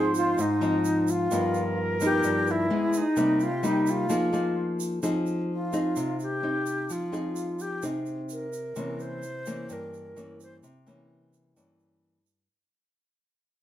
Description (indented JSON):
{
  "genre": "bossa nova",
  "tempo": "129 BPM",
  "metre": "4/4",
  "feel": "straight",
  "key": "F minor",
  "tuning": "A4 = 441 Hz",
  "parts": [
    { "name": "bright alto flute", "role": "melody", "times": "0.0-10.6 s", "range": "D#4 to C5", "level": "-28 LUFS", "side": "equal", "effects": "none" },
    { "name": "jazz flute", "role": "second line", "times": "0.0-4.8 s", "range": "F4 to C5", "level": "-33 LUFS", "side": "right 2 dB", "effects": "none" },
    { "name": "nylon-string guitar", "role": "accompaniment", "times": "0.0-12.5 s", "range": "G2 to Ab4", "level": "-28 LUFS", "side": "left 1 dB", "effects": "none" },
    { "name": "egg shaker", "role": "percussion", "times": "0.1-12.5 s", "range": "none", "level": "-42 LUFS", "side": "right 7 dB", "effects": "none" }
  ],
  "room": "wet studio reverb, RT60 0.6 s",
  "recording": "heard from further back in the room",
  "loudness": "-25 LUFS",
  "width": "side -12 dB against mid",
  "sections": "0.0-5.0 A section; 5.0-12.5 B section",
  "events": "fade-out 5.0-12.5; alto flute solo 5.0-12.5",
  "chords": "0.0 Ab6; 1.3 G7alt; 2.7 Emaj7/G#; 3.2 Cm7; 4.1 Fm7; 8.8 C7b9",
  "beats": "0.38 0.85 | 1.31 1.78 2.24 2.71 | 3.17 3.64 4.11 4.57 | 5.04 5.50 5.97 6.43 | 6.90 7.36 7.83 8.30 | 8.76 9.23 9.69 10.16 | 10.63 11.09 11.56 12.03"
}